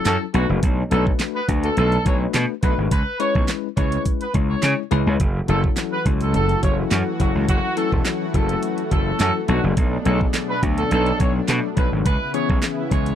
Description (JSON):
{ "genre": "dance-pop", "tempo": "105 BPM", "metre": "4/4", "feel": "straight", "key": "F# minor", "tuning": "A4 = 440 Hz", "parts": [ { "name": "bell-like tine electric piano", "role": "accompaniment", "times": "0.0-13.2 s", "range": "E3 to C#5", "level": "-26 LUFS", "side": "left 22 dB", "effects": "sidechain pumping" }, { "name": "clear horn section", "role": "melody", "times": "0.1-13.2 s", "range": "F#4 to C#5", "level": "-24 LUFS", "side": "right 2 dB", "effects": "sidechain pumping, slapback echo" }, { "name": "gritty slap bass", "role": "bass", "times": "0.1-13.1 s", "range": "E1 to C#3", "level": "-20 LUFS", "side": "right 1 dB", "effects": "overdrive, sidechain pumping" }, { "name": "smooth R&B drum kit", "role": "drums", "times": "0.1-13.2 s", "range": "handclaps, hi-hat, kick drum, snare drum", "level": "-21 LUFS", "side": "right 1 dB", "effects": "none" }, { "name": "group handclap", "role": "percussion", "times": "0.1-12.8 s", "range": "none", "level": "-33 LUFS", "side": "right 23 dB", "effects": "none" }, { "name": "lush unison pad", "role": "sustained chords", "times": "5.2-13.2 s", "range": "B2 to F#4", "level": "-29 LUFS", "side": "right 1 dB", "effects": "chorus, sidechain pumping" } ], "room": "little or no reverb", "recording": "dry, close 1970s-style studio recording", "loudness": "-18 LUFS", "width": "side -10 dB against mid", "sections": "0.0-13.2 A section", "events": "none", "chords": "0.3 Bm7; 2.9 C#m7; 5.2 F#m7; 9.5 Bm7; 12.1 C#m7", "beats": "0.06 | 0.63 1.20 1.77 2.34 | 2.91 3.48 4.06 4.63 | 5.20 5.77 6.34 6.91 | 7.49 8.06 8.63 9.20 | 9.77 10.34 10.91 11.48 | 12.06 12.63" }